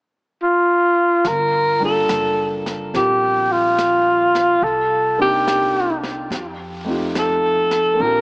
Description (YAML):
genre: jazz ballad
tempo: 71 BPM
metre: 4/4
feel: swing 67% on 8ths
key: G minor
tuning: A4 = 437 Hz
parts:
  - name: breathy alto saxophone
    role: melody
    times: 0.4-8.2 s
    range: F4 to Bb4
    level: -16 LUFS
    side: equal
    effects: analog delay
  - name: upright bass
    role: bass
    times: 1.2-8.2 s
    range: F#1 to F2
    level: -33 LUFS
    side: equal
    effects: none
  - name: jazz brush drum kit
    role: drums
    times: 1.2-8.2 s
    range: brushed snare drum, hi-hat, snare drum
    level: -30 LUFS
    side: equal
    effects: vintage 12-bit sampler grit
  - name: warm baby grand piano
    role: accompaniment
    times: 1.8-8.2 s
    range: G3 to Bb4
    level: -25 LUFS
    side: equal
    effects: none
room: moderate spring reverb, RT60 2.5 s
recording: worn, warbling old tape, cassette tape, warbly pitch drift, small speaker sound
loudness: -15 LUFS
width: side -38 dB against mid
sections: 0.0-1.2 A section; 1.2-8.2 B section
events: none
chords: 0.0 N.C.; 1.2 Gm9; 4.6 Cm7; 6.3 F9